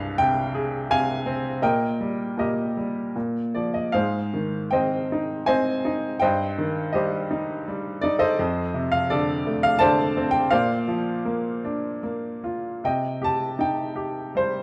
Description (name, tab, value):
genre	classical, lyrical solo piano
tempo	72-86 BPM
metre	3/4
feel	rubato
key	unclear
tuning	A4 = 440 Hz
part	bright upright piano	solo	0.0-14.6 s	C2 to A5	-24 LUFS	equal	none
room	moderate recital hall reverb, RT60 1.6 s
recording	dark, warm production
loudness	-24 LUFS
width	mono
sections	0.0-12.8 A section; 12.8-14.6 B section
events	none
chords	0.0 Fmadd9/C; 1.6 Eb/Bb; 3.2 Bb5; 3.9 Ab; 6.2 Cm/G; 8.4 F6; 10.5 Bbadd9; 12.8 Cm